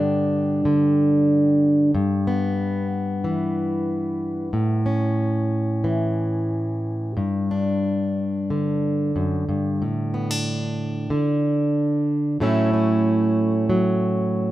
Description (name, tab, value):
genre	folk, solo fingerstyle acoustic guitar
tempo	92 BPM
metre	4/4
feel	straight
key	unclear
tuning	A4 = 440 Hz
part	fingerpicked plugged-in steel-string acoustic guitar	solo	0.0-14.5 s	F#2 to G4	-19 LUFS	equal	none
room	light reverb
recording	minimal, uncompressed stereo recording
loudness	-19 LUFS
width	side -15 dB against mid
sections	0.0-14.5 A section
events	none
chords	0.0 G; 1.9 Em/G; 4.5 Aadd9; 7.2 G5; 9.8 Asus4; 12.4 F#m7/A